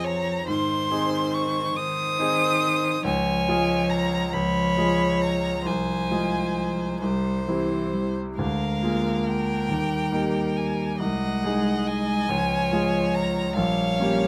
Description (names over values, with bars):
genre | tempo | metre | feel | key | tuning
classical, slow romantic movement for piano quartet | 46 BPM (dotted quarters) | 6/8 | rubato | unclear | A4 = 439 Hz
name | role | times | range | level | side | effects
rich violin | melody | 0.0-14.3 s | F5 to Eb6 | -30 LUFS | equal | none
clear violin | second line | 0.0-14.3 s | Bb4 to Eb5 | -32 LUFS | equal | none
rich cello | second line | 0.0-14.3 s | Eb3 to Ab3 | -30 LUFS | equal | none
bright concert grand piano | accompaniment | 0.0-14.3 s | Bb1 to Ab4 | -29 LUFS | equal | none
room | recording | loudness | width
little or no reverb | close, detailed microphones | -24 LUFS | mono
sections
0.0-14.3 A section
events
none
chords
0.5 Ab; 3.0 Db; 5.6 Fm/C; 7.0 C; 8.4 Bb7/D; 9.7 Eb; 11.0 Ab7/C; 12.3 Db; 13.6 Gm7b5/Bb